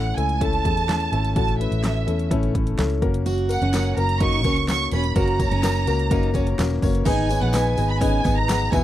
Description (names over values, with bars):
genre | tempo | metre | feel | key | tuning
piano-driven pop | 126 BPM | 4/4 | straight | unclear | A4 = 440 Hz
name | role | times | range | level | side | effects
warm studio violin section | melody | 0.0-8.8 s | E5 to C#6 | -25 LUFS | right 4 dB | none
warm upright piano | accompaniment | 0.0-8.8 s | G#2 to F#5 | -26 LUFS | left 6 dB | none
vintage muted fingered electric bass | bass | 0.0-8.8 s | E1 to E2 | -23 LUFS | right 1 dB | none
deep house drum kit | drums | 0.2-8.8 s | crash cymbal, handclaps, hi-hat, kick drum, snare drum | -25 LUFS | right 1 dB | overdrive
fingerpicked steel-string acoustic guitar | riff | 3.3-8.8 s | B3 to F#4 | -27 LUFS | right 4 dB | none
tambourine | percussion | 3.3-8.8 s | none | -41 LUFS | left 7 dB | none
room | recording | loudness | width
little or no reverb | dry, close 1970s-style studio recording | -19 LUFS | side -13 dB against mid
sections
0.0-7.1 A section; 7.1-8.8 B section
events
none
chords
0.0 A; 3.0 F#; 7.1 G#m